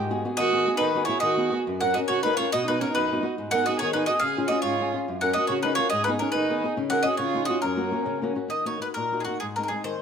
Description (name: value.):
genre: italian folk, Italian serenade.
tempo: 140 BPM (dotted quarters).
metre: 6/8.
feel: rubato.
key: F# major.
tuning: A4 = 440 Hz.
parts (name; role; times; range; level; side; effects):
flamenco guitar; accompaniment; 0.0-10.0 s; F#2 to A#4; -28 LUFS; left 4 dB; none.
bowl-back mandolin; melody; 0.4-10.0 s; Gb4 to F#5; -26 LUFS; equal; none.
warm violin; second line; 0.4-8.3 s; C#4 to A#4; -28 LUFS; right 6 dB; none.
room: moderate recital hall reverb, RT60 1.8 s.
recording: close, detailed microphones.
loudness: -22 LUFS.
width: side -7 dB against mid.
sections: 0.0-1.7 A section; 1.7-8.5 B section; 8.5-10.0 C section.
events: none.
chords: 0.0 G#m7; 1.7 F#; 2.5 B; 3.4 G#m; 4.2 C#; 5.1 F#; 5.9 G#m; 6.8 C#sus4; 7.2 C#add9; 7.6 F#; 8.5 Ebm; 9.4 Ab.